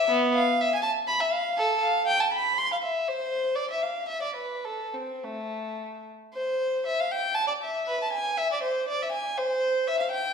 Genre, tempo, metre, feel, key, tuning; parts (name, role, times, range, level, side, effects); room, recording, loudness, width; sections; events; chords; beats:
classical, baroque-style suite movement for unaccompanied violin; 104-126 BPM; 3/4; rubato; A minor; A4 = 438 Hz
warm violin; solo; 0.0-10.3 s; A3 to C6; -24 LUFS; equal
wet recital hall reverb, RT60 1.3 s; recorded in a church or concert hall; -24 LUFS; side -6 dB against mid
0.0-6.3 A section; 6.3-10.3 A section
| 0.08 0.59 1.07 | 1.56 2.05 2.55 | 3.05 3.56 4.09 | 4.65 5.22 5.78 | 6.33 6.85 7.35 | 7.88 8.39 8.89 | 9.39 9.88